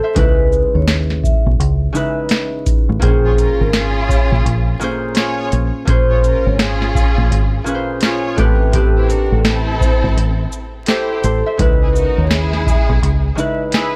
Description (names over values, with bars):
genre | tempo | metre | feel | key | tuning
hip hop, boom-bap hip-hop | 84 BPM | 4/4 | swing 63% on 16ths | unclear | A4 = 437 Hz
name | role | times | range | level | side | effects
concert harp | accompaniment | 0.0-14.0 s | A2 to E5 | -24 LUFS | equal | cassette tape, high-pass filter, low-pass filter
vibraphone with soft mallets | melody | 0.2-13.6 s | G4 to F5 | -24 LUFS | equal | high-pass filter, low-pass filter
deep dub fingered electric bass | bass | 0.2-13.3 s | Ab1 to Eb2 | -20 LUFS | equal | none
booming analog drum machine | drums | 0.2-13.9 s | hi-hat, kick drum, shaker, snare drum | -19 LUFS | equal | none
warm symphonic string section | stabs | 3.2-14.0 s | Ab3 to Db5 | -25 LUFS | equal | high-pass filter, low-pass filter, plate reverb, delay
room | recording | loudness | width
light reverb | vinyl crackle | -15 LUFS | mono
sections
0.0-14.0 A section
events
break 13.0-14.0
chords
0.2 Dbm9; 3.0 Bbm9; 8.4 Am9; 11.6 Dbm9